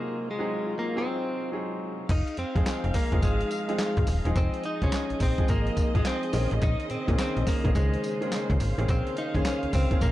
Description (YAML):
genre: R&B, new jack swing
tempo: 106 BPM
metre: 4/4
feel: swing 64% on 16ths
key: unclear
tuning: A4 = 440 Hz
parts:
  - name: direct-recorded clean electric guitar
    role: melody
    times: 0.0-10.1 s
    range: Ab3 to Eb4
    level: -31 LUFS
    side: left 1 dB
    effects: none
  - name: clear baby grand piano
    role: accompaniment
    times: 0.0-10.1 s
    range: Eb3 to C5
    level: -33 LUFS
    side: right 1 dB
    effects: none
  - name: warm studio string section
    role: sustained chords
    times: 0.0-10.1 s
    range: C3 to F5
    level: -36 LUFS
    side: left 1 dB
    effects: none
  - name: slap-like FM bass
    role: bass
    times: 2.1-10.1 s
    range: Eb1 to Bb2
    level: -27 LUFS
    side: equal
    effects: none
  - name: dusty soul sampler-style drum kit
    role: drums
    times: 2.1-10.1 s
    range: crash cymbal, handclaps, hi-hat, kick drum, snare drum, tambourine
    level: -27 LUFS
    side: equal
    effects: none
room: little or no reverb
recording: dark, warm production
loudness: -24 LUFS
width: side -15 dB against mid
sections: 0.0-2.1 A section; 2.1-10.1 B section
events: break 0.0-2.1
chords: 0.0 Ab7; 2.1 Fm7; 6.3 Bbm11